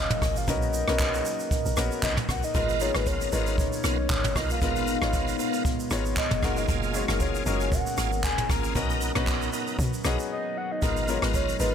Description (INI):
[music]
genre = amapiano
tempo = 116 BPM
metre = 4/4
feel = swing 55% on 16ths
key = G# dorian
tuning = A4 = 440 Hz
[part]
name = soft octave-layered synth lead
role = melody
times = 0.0-11.7 s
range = A#4 to A#5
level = -31 LUFS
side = equal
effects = chorus, phaser, tape echo
[part]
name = clear concert grand piano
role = accompaniment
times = 0.0-11.7 s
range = G#3 to C#5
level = -33 LUFS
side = left 5 dB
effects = none
[part]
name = deep dark ambient pad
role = sustained chords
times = 0.0-11.7 s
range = F#3 to A#5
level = -34 LUFS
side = left 1 dB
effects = chorus, built-in reverb, sidechain pumping
[part]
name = deep log drum bass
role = bass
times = 0.0-11.7 s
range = E#1 to B2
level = -30 LUFS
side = equal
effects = none
[part]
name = jazz brush drum kit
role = drums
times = 0.1-11.7 s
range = handclaps, hi-hat, kick drum, rim click, shaker, toms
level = -28 LUFS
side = right 1 dB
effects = none
[part]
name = bright tonewheel organ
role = stabs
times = 2.5-11.7 s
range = A#3 to A#4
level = -33 LUFS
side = right 1 dB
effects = chorus vibrato, slow rotary speaker, tape echo
[sound]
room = light reverb, small room ambience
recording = none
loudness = -24 LUFS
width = side -8 dB against mid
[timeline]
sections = 0.0-11.7 A section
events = break 10.3-10.8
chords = 0.5 Bmaj7; 2.5 G#m69; 6.4 F#maj9; 8.8 Bmaj7; 10.8 G#m69